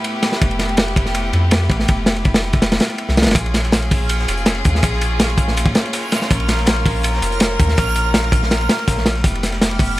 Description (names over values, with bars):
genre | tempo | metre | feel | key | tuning
drum and bass, jungle | 163 BPM | 4/4 | straight | Bb phrygian | A4 = 439 Hz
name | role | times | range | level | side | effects
warm studio string section | sustained chords | 0.0-10.0 s | A3 to Bb4 | -24 LUFS | left 1 dB | none
crunchy breakbeat drum kit | drums | 0.0-9.9 s | kick drum, ride cymbal, snare drum | -16 LUFS | equal | none
soft dub sub bass | bass | 0.4-10.0 s | F1 to F2 | -20 LUFS | equal | none
crunchy breakbeat drum kit | drums | 3.4-9.9 s | hi-hat, snare drum | -30 LUFS | equal | high-pass filter on hats, high-pass filter on snare, high-pass filter on room
backwards swelling texture | texture | 4.1-10.0 s | F6 | -27 LUFS | right 3 dB | built-in reverb
room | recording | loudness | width
small room ambience | vinyl crackle | -14 LUFS | side -16 dB against mid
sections
0.0-10.0 A section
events
kick drops out 2.6-3.4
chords
0.0 Fmaj9#11; 3.4 Bbm7; 9.2 Fmaj9#11